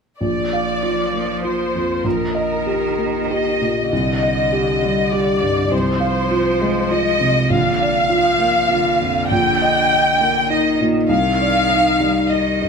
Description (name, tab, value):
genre	neoclassical piano and strings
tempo	100 BPM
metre	3/4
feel	rubato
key	Eb major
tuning	A4 = 439 Hz
part	warm studio violin section	melody	0.2-12.7 s	Bb4 to G5	-18 LUFS	left 1 dB	none
part	rich cello	second line	0.2-12.7 s	D3 to F3	-26 LUFS	right 3 dB	none
part	felt-muted upright piano	accompaniment	0.2-12.7 s	Bb1 to F5	-18 LUFS	equal	none
room	wet large studio reverb, RT60 0.9 s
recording	band playing live in one room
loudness	-15 LUFS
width	side -5 dB against mid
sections	0.2-12.7 A section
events	none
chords	0.2 Bb; 2.0 Eb/Bb; 3.9 Cmadd9; 5.7 Fm/C; 7.5 Bb; 9.3 Eb/Bb; 11.1 Cmadd9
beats	| 0.21 0.83 1.44 | 2.05 2.66 3.31 | 3.91 4.52 5.12 | 5.72 6.32 6.92 | 7.52 8.11 8.70 | 9.30 9.90 10.49 | 11.09 11.69 12.31